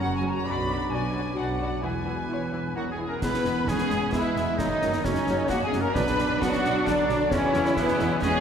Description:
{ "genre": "cinematic, heroic adventure film score", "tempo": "132 BPM", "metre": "3/4", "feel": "straight", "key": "unclear", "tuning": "A4 = 444 Hz", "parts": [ { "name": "warm symphonic violin section", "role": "melody", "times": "0.0-8.4 s", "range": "B4 to B5", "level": "-36 LUFS", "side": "left 4 dB", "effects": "none" }, { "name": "clear oboe", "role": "second line", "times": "0.0-8.4 s", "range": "B3 to D5", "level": "-34 LUFS", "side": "right 2 dB", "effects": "none" }, { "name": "hollow concert flute", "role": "second line", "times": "0.0-8.4 s", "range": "B4 to B5", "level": "-32 LUFS", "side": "equal", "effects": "none" }, { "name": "warm clarinet", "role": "second line", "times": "0.0-8.4 s", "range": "E3 to F#4", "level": "-33 LUFS", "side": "left 1 dB", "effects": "none" }, { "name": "warm symphonic violin section", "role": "second line", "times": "0.0-8.4 s", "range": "B3 to D5", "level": "-30 LUFS", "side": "left 1 dB", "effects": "none" }, { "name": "warm symphonic viola section", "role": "accompaniment", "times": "0.0-8.3 s", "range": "E3 to E4", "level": "-34 LUFS", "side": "right 1 dB", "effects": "none" }, { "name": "mellow French horn section", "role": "sustained chords", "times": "0.0-8.4 s", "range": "B2 to D4", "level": "-32 LUFS", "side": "left 3 dB", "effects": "none" }, { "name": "rich studio double bass section", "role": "bass", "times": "0.0-8.3 s", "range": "E1 to E2", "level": "-33 LUFS", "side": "right 2 dB", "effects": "none" }, { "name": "rich symphonic cello section", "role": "bass", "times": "0.0-8.4 s", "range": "E2 to E4", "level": "-31 LUFS", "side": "right 3 dB", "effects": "none" }, { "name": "concert snare drum, clash cymbals and concert bass drum", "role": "drums", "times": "3.2-8.4 s", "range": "none", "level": "-33 LUFS", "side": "right 1 dB", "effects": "none" } ], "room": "wet cathedral reverb, RT60 4.3 s", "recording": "recorded in a church or concert hall", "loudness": "-23 LUFS", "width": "side -8 dB against mid", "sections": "0.0-3.2 A section; 3.2-8.4 A section", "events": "none", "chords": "0.5 Bm; 1.8 E; 4.6 F#; 6.0 Bm; 7.3 E" }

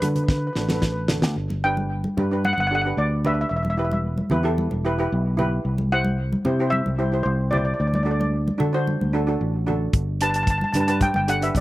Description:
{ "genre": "calypso", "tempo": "112 BPM", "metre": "4/4", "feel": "straight", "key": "G major", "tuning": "A4 = 440 Hz", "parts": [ { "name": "steel pan", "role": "melody", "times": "0.0-11.6 s", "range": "B4 to A5", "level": "-24 LUFS", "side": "equal", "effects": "slapback echo" }, { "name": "steel pan", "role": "accompaniment", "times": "0.0-11.6 s", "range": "D4 to C5", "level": "-27 LUFS", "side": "right 2 dB", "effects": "slapback echo" }, { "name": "fingered electric bass", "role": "bass", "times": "0.0-11.6 s", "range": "E1 to D3", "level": "-23 LUFS", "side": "equal", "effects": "none" }, { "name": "damped 70s drum kit", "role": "drums", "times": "0.0-1.4, 9.9-11.6 s", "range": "hi-hat, kick drum, rim click, snare drum", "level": "-23 LUFS", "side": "equal", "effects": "none" }, { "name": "congas", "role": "percussion", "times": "0.0-11.3 s", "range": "none", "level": "-29 LUFS", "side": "equal", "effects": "none" } ], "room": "little or no reverb", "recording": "recorded outdoors, with no room sound", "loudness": "-20 LUFS", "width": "side -17 dB against mid", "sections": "0.0-1.4 A section; 1.4-11.6 B section", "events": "drum fill 0.3-1.4", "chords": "0.0 D; 1.4 G; 3.5 Em; 5.7 C; 7.8 D; 9.9 G" }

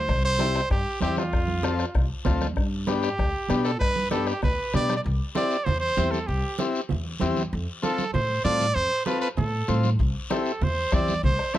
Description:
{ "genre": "latin, cumbia", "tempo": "194 BPM", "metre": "4/4", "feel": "straight", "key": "C major", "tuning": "A4 = 440 Hz", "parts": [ { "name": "bright trumpet", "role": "melody", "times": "0.0-11.6 s", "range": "F4 to E5", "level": "-27 LUFS", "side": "right 2 dB", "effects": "none" }, { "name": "upright bass", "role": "bass", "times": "0.0-11.4 s", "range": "C2 to B2", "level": "-27 LUFS", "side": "equal", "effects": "none" }, { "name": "bombo", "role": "percussion", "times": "0.1-5.0, 10.0-11.6 s", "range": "none", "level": "-28 LUFS", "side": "left 1 dB", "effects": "none" }, { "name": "congas", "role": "percussion", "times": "0.1-11.6 s", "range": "none", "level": "-32 LUFS", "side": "right 6 dB", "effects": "none" }, { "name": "guiro", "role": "percussion", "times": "0.1-11.6 s", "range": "none", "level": "-40 LUFS", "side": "left 5 dB", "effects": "none" }, { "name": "overdriven combo organ", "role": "accompaniment", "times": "0.4-11.6 s", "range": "B3 to C5", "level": "-29 LUFS", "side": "left 4 dB", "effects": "none" } ], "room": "little or no reverb", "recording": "close, detailed microphones", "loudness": "-22 LUFS", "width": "side -13 dB against mid", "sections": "0.0-5.0 A section; 5.0-11.6 B section", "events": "none", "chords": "0.1 C; 1.3 F; 2.6 G; 5.0 C; 7.5 F; 10.0 C" }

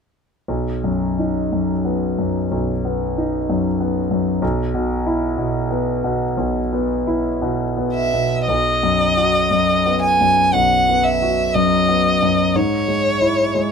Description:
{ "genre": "classical, romantic duo for violin and grand piano", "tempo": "60 BPM", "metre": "4/4", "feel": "uneven beats, rubato", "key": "B major", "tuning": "A4 = 439 Hz", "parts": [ { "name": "clear concert grand piano", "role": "accompaniment", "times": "0.5-13.7 s", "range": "B1 to F#4", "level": "-18 LUFS", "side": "left 1 dB", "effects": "none" }, { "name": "rich violin", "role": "melody", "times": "7.9-13.7 s", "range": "C#5 to G#5", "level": "-16 LUFS", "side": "equal", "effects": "none" } ], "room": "light reverb", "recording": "close, detailed microphones", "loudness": "-16 LUFS", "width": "side -6 dB against mid", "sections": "0.5-8.5 A section; 8.5-13.7 B section", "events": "none", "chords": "0.5 B; 4.4 E5/B; 8.5 B; 12.5 E/G#" }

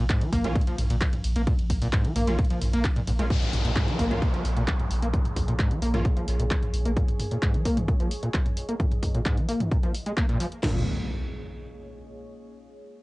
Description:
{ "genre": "driving peak-time techno", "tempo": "131 BPM", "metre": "4/4", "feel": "straight", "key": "Bb minor", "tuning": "A4 = 441 Hz", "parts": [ { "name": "overdriven acid bass", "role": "riff", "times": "0.0-10.8 s", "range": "Ab2 to Bb3", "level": "-29 LUFS", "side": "equal", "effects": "distortion, lush chorus, sidechain pumping, cassette tape, analog delay" }, { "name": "warm sub bass", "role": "bass", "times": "0.0-7.0 s", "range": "Bb1", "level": "-28 LUFS", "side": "equal", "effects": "tube saturation, sidechain pumping, low-pass filter" }, { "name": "punchy analog drum machine", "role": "drums", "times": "0.1-10.6 s", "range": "handclaps, hi-hat, ride cymbal, toms", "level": "-33 LUFS", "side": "equal", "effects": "overdrive, cassette tape" }, { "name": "techno drum kit", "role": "drums", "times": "0.1-10.7 s", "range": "crash cymbal, kick drum, snare drum", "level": "-26 LUFS", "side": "equal", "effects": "overdrive, cassette tape" }, { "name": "rave stab", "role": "stabs", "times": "0.4-6.1 s", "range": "Bb3 to F4", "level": "-35 LUFS", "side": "right 1 dB", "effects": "chorus, built-in reverb, sidechain pumping, cassette tape, analog delay" }, { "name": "downlifter and impact", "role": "sound effects", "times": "3.3-7.0, 10.6-12.5 s", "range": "none", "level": "-33 LUFS", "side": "equal", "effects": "none" }, { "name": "deep dark ambient pad", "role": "texture", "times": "4.9-12.4 s", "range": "Bb3 to F5", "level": "-41 LUFS", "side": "right 1 dB", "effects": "chorus, built-in reverb, sidechain pumping, cassette tape" } ], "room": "light reverb", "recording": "home recording on cassette, nothing above 10.3 kHz", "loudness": "-23 LUFS", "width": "side -21 dB against mid", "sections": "0.0-3.3 A section; 3.3-10.6 B section; 10.6-12.5 C section", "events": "drop 0.0-3.3; fade-out on ambient pad 3.3-10.6", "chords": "0.0 Bbm" }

